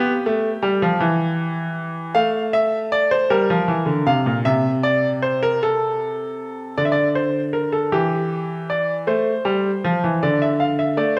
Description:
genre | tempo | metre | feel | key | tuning
classical, baroque-style two-part invention for grand piano | 52 BPM (dotted quarters) | 6/8 | straight | unclear | A4 = 440 Hz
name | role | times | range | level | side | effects
bright baby grand piano | solo | 0.0-11.2 s | Bb2 to F5 | -20 LUFS | equal | none
room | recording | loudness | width
wet recital hall reverb, RT60 1.7 s | none | -20 LUFS | mono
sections
0.0-6.8 A section; 6.8-11.2 B section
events
none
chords
0.0 G7(no3); 1.0 Em; 2.2 F/A; 3.3 Gm7; 4.5 C7; 5.6 Am/C; 6.8 Bb/D; 7.9 Em7; 9.1 Am; 10.2 Dm

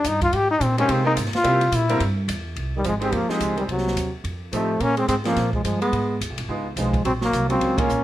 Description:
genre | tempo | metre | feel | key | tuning
jazz, small-group swing and bop | 214 BPM | 4/4 | swing 60% on 8ths | F minor | A4 = 440 Hz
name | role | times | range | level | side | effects
clear trombone | melody | 0.0-8.0 s | Gb3 to G4 | -22 LUFS | left 2 dB | none
upright bass | bass | 0.0-8.0 s | Ab1 to C3 | -26 LUFS | right 1 dB | none
open jazz drum kit | drums | 0.0-8.0 s | hi-hat, kick drum, ride cymbal, snare drum | -30 LUFS | equal | none
bright upright piano | accompaniment | 0.8-7.9 s | G3 to Bb4 | -27 LUFS | right 2 dB | none
warm tenor saxophone | second line | 2.8-8.0 s | C3 to Bb3 | -27 LUFS | right 5 dB | none
room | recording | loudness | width
light reverb | none | -20 LUFS | side -13 dB against mid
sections
0.0-2.6 A section; 2.6-8.0 B section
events
trombone solo 0.0-2.6; band accent 7.7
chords
0.3 Abmaj7; 1.4 C7; 2.6 Fm7; 3.7 Cdim; 4.2 F7; 4.8 Bb7(no3); 5.9 Abm; 6.5 Db7; 7.0 Gbmaj7

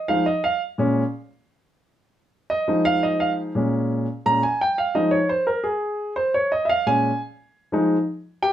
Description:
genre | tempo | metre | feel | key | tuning
latin | 173 BPM | 4/4 | straight | F minor | A4 = 440 Hz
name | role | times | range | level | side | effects
warm grand piano | solo | 0.0-8.5 s | Bb2 to Bb5 | -19 LUFS | equal | none
room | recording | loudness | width
wet studio ambience, RT60 0.5 s | heard from further back in the room | -20 LUFS | side -11 dB against mid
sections
0.0-8.5 A section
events
grand piano solo 0.0-8.5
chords
0.0 Fm7; 0.8 Bbm7; 2.2 Fm7; 3.6 Bbm7; 4.9 Fm7; 6.3 Bbm7; 7.7 Fm7

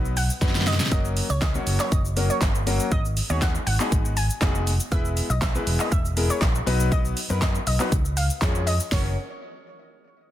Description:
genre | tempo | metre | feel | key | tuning
dance-pop | 120 BPM | 4/4 | straight | F# major | A4 = 443 Hz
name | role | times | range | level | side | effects
clear concert grand piano | accompaniment | 0.0-9.2 s | F#3 to C#5 | -29 LUFS | left 4 dB | sidechain pumping
vintage muted fingered electric bass | bass | 0.0-9.2 s | E1 to F#2 | -25 LUFS | equal | sidechain pumping
pop drum kit | drums | 0.1-9.0 s | handclaps, hi-hat, kick drum, shaker, snare drum | -24 LUFS | equal | none
analog pluck | melody | 0.2-9.2 s | B4 to G#5 | -32 LUFS | equal | chorus, sidechain pumping, tape echo
room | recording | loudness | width
digital ambience | dense, heavily limited modern master | -21 LUFS | side -13 dB against mid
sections
0.0-8.9 A section; 8.9-10.3 B section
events
drop 0.0-8.9; drum fill 0.4-0.9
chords
0.0 B; 0.9 F#; 2.9 G#m7; 4.9 E; 6.7 B; 7.9 C#; 8.9 F#

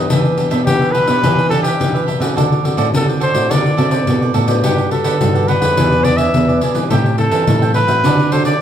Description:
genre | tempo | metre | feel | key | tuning
samba and choro | 106 BPM | 4/4 | straight | unclear | A4 = 441 Hz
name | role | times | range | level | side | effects
cavaquinho | accompaniment | 0.0-8.6 s | D4 to G5 | -22 LUFS | right 6 dB | none
nylon-string guitar | accompaniment | 0.0-8.6 s | A2 to A4 | -21 LUFS | left 4 dB | none
nylon-string guitar | bass | 0.0-8.5 s | E2 to E3 | -18 LUFS | right 1 dB | none
pandeiro | percussion | 0.1-8.6 s | none | -18 LUFS | left 2 dB | none
warm trumpet | melody | 0.7-8.6 s | G4 to E5 | -18 LUFS | equal | none
room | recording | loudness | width
wet studio ambience, RT60 0.5 s | heard from further back in the room | -12 LUFS | side -9 dB against mid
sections
0.0-8.6 A section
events
none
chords
0.1 Em7; 2.4 D7; 4.6 Gmaj9; 5.8 E7; 6.9 Am7; 8.0 D7

